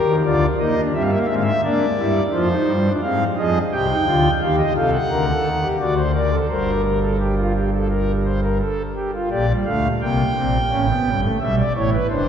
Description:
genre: classical, baroque-style 3-part fugue for pipe organ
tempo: 86 BPM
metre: 4/4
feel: straight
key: G minor from 3.7 s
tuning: A4 = 441 Hz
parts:
  - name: pipe organ, foundations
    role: solo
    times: 0.0-12.3 s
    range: F#1 to G5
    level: -17 LUFS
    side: equal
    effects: none
room: wet cathedral reverb, RT60 5.2 s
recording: recorded in a church or concert hall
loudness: -17 LUFS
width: side -8 dB against mid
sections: 0.0-9.3 A section; 9.3-12.3 B section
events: none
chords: 0.0 Gm; 0.9 C7/G; 2.3 Fm; 3.7 Cm; 5.1 D7; 6.5 Gm; 9.3 Gm/Bb; 10.7 A7

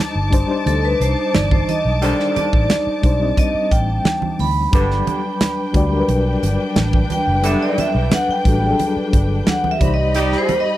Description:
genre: lush 1970s-style soul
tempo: 89 BPM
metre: 4/4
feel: straight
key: G major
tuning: A4 = 438 Hz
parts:
  - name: warm studio string section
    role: second line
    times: 0.0-10.8 s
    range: D4 to D6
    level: -26 LUFS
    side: equal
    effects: none
  - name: mellow reed electric piano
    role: accompaniment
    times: 0.0-10.8 s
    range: F#3 to Eb5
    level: -22 LUFS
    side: left 4 dB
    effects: fast tremolo
  - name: vintage muted fingered electric bass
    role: bass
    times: 0.2-10.3 s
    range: F#1 to D2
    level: -20 LUFS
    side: equal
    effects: none
  - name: modern studio drum kit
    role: drums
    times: 0.3-10.6 s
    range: hi-hat, kick drum, snare drum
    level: -18 LUFS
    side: equal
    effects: none
  - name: vibraphone with medium hard mallets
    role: melody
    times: 0.7-10.8 s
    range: A4 to B5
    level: -21 LUFS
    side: right 1 dB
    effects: none
  - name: congas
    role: percussion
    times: 0.7-10.6 s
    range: none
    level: -25 LUFS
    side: right 5 dB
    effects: none
  - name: warm horn section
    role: stabs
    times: 2.0-10.6 s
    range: D3 to G4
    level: -25 LUFS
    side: right 2 dB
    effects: tape echo
room: small room ambience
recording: dry, close 1970s-style studio recording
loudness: -15 LUFS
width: side -14 dB against mid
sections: 0.0-10.8 A section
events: vibraphone solo 0.0-10.8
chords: 0.0 Cmadd9; 4.7 Gmaj7; 9.8 Cmadd9

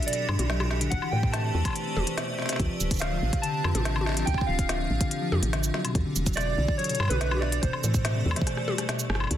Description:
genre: IDM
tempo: 143 BPM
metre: 4/4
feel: straight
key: D dorian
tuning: A4 = 440 Hz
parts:
  - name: warbly lo-fi synth keys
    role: melody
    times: 0.0-8.8 s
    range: B4 to A5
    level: -33 LUFS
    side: right 2 dB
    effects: chorus, vintage 12-bit sampler grit, dub echo
  - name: icy glass pad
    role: sustained chords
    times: 0.0-9.3 s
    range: D3 to D5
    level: -34 LUFS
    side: right 1 dB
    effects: chorus, built-in reverb
  - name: organic electronic drum kit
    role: drums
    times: 0.0-9.4 s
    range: cabasa, hi-hat, rim click, snare drum, toms, woodblock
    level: -31 LUFS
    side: left 1 dB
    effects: soft clipping on snare
  - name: harp-like synth pluck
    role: arpeggios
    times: 0.1-9.3 s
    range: B2 to G3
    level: -33 LUFS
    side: left 3 dB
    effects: chorus, digital delay
  - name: woody FM bass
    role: bass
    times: 0.3-9.4 s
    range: D1 to A2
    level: -28 LUFS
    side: equal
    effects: none
  - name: electronic kick drum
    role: drums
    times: 0.9-8.5 s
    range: none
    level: -28 LUFS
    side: equal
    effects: none
  - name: bubbling stepped-filter texture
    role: texture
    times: 9.3-9.4 s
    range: A4 to A5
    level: -46 LUFS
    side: left 4 dB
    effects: none
room: light reverb, digital ambience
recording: dense, heavily limited modern master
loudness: -24 LUFS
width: side -11 dB against mid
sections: 0.0-9.3 A section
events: drum fill 8.5-9.3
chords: 0.0 Em11; 0.9 Am11; 2.6 Dm7; 5.7 Em11; 7.6 Am11

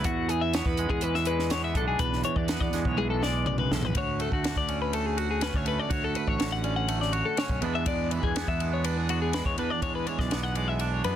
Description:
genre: math rock and midwest emo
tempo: 123 BPM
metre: 4/4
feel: straight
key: D lydian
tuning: A4 = 440 Hz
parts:
  - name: twangy electric guitar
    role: accompaniment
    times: 0.0-11.2 s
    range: D2 to F#4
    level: -31 LUFS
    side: right 9 dB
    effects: none
  - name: twelve-string electric guitar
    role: arpeggios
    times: 0.0-11.2 s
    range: F#4 to F#5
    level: -30 LUFS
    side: left 8 dB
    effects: none
  - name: fuzz fingered electric bass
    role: bass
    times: 0.0-11.2 s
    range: A1 to F#2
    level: -31 LUFS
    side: equal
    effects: overdrive
  - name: compact cocktail drum kit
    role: drums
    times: 0.0-11.2 s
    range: hi-hat, kick drum, ride cymbal, snare drum, toms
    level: -32 LUFS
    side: equal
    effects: none
room: little or no reverb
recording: dense, heavily limited modern master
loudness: -25 LUFS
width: side -10 dB against mid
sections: 0.0-4.0 A section; 4.0-11.2 B section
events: drum fill 3.0-4.0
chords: 0.1 E9; 4.0 Dmaj7; 7.6 E7

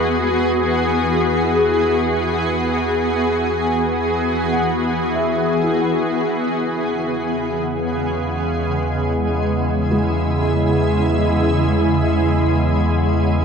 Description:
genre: ambient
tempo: free time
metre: none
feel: none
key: unclear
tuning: A4 = 440 Hz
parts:
  - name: shimmering ambient pad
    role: sustained chords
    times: 0.0-13.4 s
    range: C#3 to G#4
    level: -18 LUFS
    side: equal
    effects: chorus, built-in reverb, shimmer reverb
  - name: felt-muted upright piano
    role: arpeggios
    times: 0.0-13.4 s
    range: G#3 to F#5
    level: -28 LUFS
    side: left 1 dB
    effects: tape echo, shimmer reverb
  - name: warm sub bass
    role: bass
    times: 0.0-13.4 s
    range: E2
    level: -24 LUFS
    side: equal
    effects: none
  - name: organ-like drone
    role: drone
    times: 6.7-13.4 s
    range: E3 to B3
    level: -25 LUFS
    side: equal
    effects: ensemble chorus, built-in reverb
room: wet cathedral reverb, RT60 4.8 s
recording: worn, warbling old tape, cassette tape, warbly pitch drift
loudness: -16 LUFS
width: side -6 dB against mid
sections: 0.0-13.4 A section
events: fade-in on felt piano 0.0-13.4; fade-in on sub bass 0.0-13.4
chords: 0.0 Eadd9; 6.1 C#m/E

